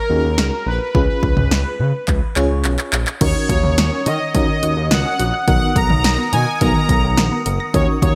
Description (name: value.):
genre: synth-pop.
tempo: 106 BPM.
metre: 4/4.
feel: straight.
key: Eb minor.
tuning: A4 = 441 Hz.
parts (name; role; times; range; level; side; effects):
analog synth brass; melody; 0.0-8.2 s; Bb4 to A#5; -24 LUFS; equal; chorus, digital delay.
FM electric piano with tremolo; accompaniment; 0.1-8.2 s; B3 to Db5; -26 LUFS; equal; none.
smooth gliding synth bass; bass; 0.1-8.2 s; F#1 to Eb3; -22 LUFS; equal; none.
punchy analog drum machine; drums; 0.4-8.2 s; crash cymbal, handclaps, hi-hat, kick drum, snare drum, toms; -21 LUFS; equal; overdrive.
bright small flute group; sustained chords; 3.2-8.2 s; A#4 to Eb6; -30 LUFS; equal; none.
unison pluck; arpeggios; 3.2-8.2 s; Eb3 to A#6; -27 LUFS; equal; digital delay.
room: moderate plate reverb, RT60 2.1 s.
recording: bright 1980s-style digital production.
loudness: -17 LUFS.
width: mono.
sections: 0.0-3.2 A section; 3.2-8.2 B section.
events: drum fill 2.1-3.2.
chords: 0.0 Ebm7; 0.9 Db7; 3.2 Ebm7; 5.5 Bmaj7.